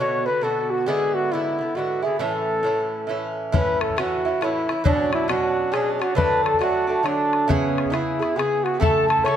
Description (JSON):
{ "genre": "celtic folk, Celtic waltz", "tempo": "136 BPM", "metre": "3/4", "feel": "swing 63% on 8ths", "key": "A major", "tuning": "A4 = 440 Hz", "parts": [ { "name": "mellow flugelhorn", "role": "melody", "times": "0.0-9.4 s", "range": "C#4 to C#5", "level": "-22 LUFS", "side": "left 1 dB", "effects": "none" }, { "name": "Irish bouzouki", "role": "accompaniment", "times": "0.0-9.4 s", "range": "G#2 to A4", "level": "-23 LUFS", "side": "right 3 dB", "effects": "none" }, { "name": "bodhran", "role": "percussion", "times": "3.5-9.4 s", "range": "none", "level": "-26 LUFS", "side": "left 4 dB", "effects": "none" }, { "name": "wooden whistle", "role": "second line", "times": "8.8-9.4 s", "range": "A5 to C#6", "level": "-28 LUFS", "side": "left 6 dB", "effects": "none" } ], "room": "moderate recital hall reverb, RT60 1.3 s", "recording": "none", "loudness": "-19 LUFS", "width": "side -9 dB against mid", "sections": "0.0-3.5 A section; 3.5-9.4 B section", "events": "none", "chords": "0.0 Bm; 0.9 E7; 2.2 A; 4.9 Bmadd9; 6.2 D; 7.5 E6; 8.8 A" }